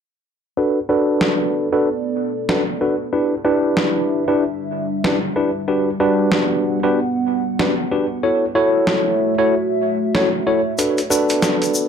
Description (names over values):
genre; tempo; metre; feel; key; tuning
glitch hop; 94 BPM; 4/4; swing 60% on 16ths; B minor; A4 = 440 Hz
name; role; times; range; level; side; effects
dark analog pad; sustained chords; 1.3-11.9 s; G3 to F#5; -24 LUFS; right 1 dB; chorus, phaser, vintage 12-bit sampler grit
tine electric piano; stabs; 0.6-11.9 s; D4 to C#5; -18 LUFS; equal; medium stereo tremolo, vintage 12-bit sampler grit, low-pass filter, dub echo
boom bap sampler-style drum kit; drums; 1.2-11.7 s; hi-hat, snare drum; -21 LUFS; equal; none
tube shaker; percussion; 10.8-11.9 s; none; -24 LUFS; left 4 dB; none
room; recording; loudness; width
wet studio ambience, RT60 0.5 s; dark, warm production; -16 LUFS; side -7 dB against mid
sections
0.6-11.9 A section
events
filter sweep on tine electric piano 0.6-11.9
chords
0.6 Bm7; 3.1 Em7; 5.7 Gmaj7; 8.2 F#m7; 10.8 Bm7